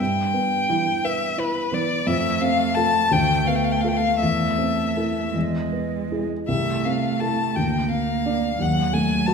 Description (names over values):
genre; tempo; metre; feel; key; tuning
classical, slow romantic movement for piano trio; 52-59 BPM (dotted quarters); 6/8; rubato; A minor; A4 = 441 Hz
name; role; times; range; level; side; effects
rich violin; melody; 0.0-9.3 s; B4 to A5; -23 LUFS; left 5 dB; none
dark baby grand piano; accompaniment; 0.0-9.3 s; C2 to D5; -24 LUFS; equal; none
dark cello; second line; 0.7-9.3 s; E3 to Bb3; -26 LUFS; right 7 dB; none
room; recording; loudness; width
wet recital hall reverb, RT60 1.4 s; recorded in a church or concert hall; -20 LUFS; side -5 dB against mid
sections
0.0-9.3 A section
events
none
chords
0.0 Em/G; 2.1 F; 3.1 Bm7b5/D; 4.2 Am/E; 5.4 E; 6.5 Am/C; 7.6 Bb/D; 8.6 D#dim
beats
| 0.00 1.04 | 2.07 3.11 | 4.22 5.35 | 6.48 7.56 | 8.59